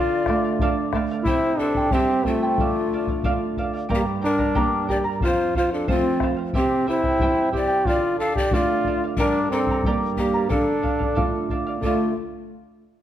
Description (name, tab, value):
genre	andean folk, Andean ensemble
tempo	91 BPM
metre	2/4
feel	straight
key	D minor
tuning	A4 = 439 Hz
part	clear trombone	melody	0.0-12.1 s	A3 to A4	-23 LUFS	equal	slapback echo
part	breathy bright large pan pipes	second line	0.0-12.1 s	F4 to F5	-28 LUFS	left 2 dB	none
part	charango	accompaniment	0.0-12.1 s	E4 to Bb5	-27 LUFS	right 2 dB	none
part	flamenco guitar	accompaniment	0.0-12.1 s	F2 to E5	-28 LUFS	right 4 dB	none
part	bombo	percussion	0.3-12.1 s	none	-27 LUFS	left 1 dB	none
room	moderate scoring stage reverb, RT60 1.5 s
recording	dark, warm production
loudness	-19 LUFS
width	side -11 dB against mid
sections	0.0-1.2 A section; 1.2-11.8 B section; 11.8-13.0 C section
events	none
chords	0.0 Dm; 1.2 C; 2.6 Dm; 3.9 Gm; 5.2 F; 6.5 C; 7.9 Dm; 9.2 Gm; 10.5 Dm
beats	0.59 | 1.25 1.91 | 2.57 3.23 | 3.90 4.56 | 5.22 5.88 | 6.54 7.20 | 7.86 8.52 | 9.18 9.84 | 10.50 11.16 | 11.82